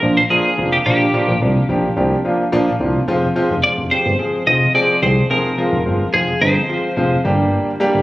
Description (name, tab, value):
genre	pop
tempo	108 BPM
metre	4/4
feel	straight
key	unclear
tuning	A4 = 441 Hz
part	twelve-string electric guitar	melody	0.0-7.2 s	G4 to Eb5	-17 LUFS	equal	digital delay
part	warm concert grand piano	accompaniment	0.0-8.0 s	F3 to Ab4	-18 LUFS	equal	none
part	chorused synth bass	bass	0.0-8.0 s	F1 to C2	-18 LUFS	equal	none
room	light reverb, studio reverb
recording	recorded on a phone in the room, club reverb, compression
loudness	-14 LUFS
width	side -17 dB against mid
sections	0.0-8.0 A section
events	none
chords	0.0 Bb; 3.1 Fm; 7.2 Gm